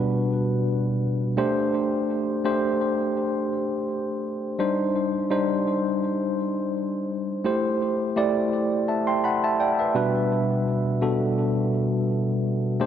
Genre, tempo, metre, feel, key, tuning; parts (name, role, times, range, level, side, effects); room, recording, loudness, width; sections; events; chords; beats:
pop; 84 BPM; 4/4; swing 55% on 16ths; G major; A4 = 440 Hz
tine electric piano; solo; 0.0-12.9 s; B2 to C6; -22 LUFS; equal; slow stereo tremolo, digital delay
moderate lush hall reverb, RT60 2.8 s; -22 LUFS; side -9 dB against mid
0.0-12.9 A section
0.0 Gmaj7/B; 1.4 D7sus4; 4.6 Cmadd9; 7.5 Am7; 10.0 Gmaj7/B
0.31 1.02 | 1.74 2.45 3.17 3.88 | 4.59 5.31 6.02 6.74 | 7.45 8.16 8.88 9.59 | 10.31 11.02 11.74 12.45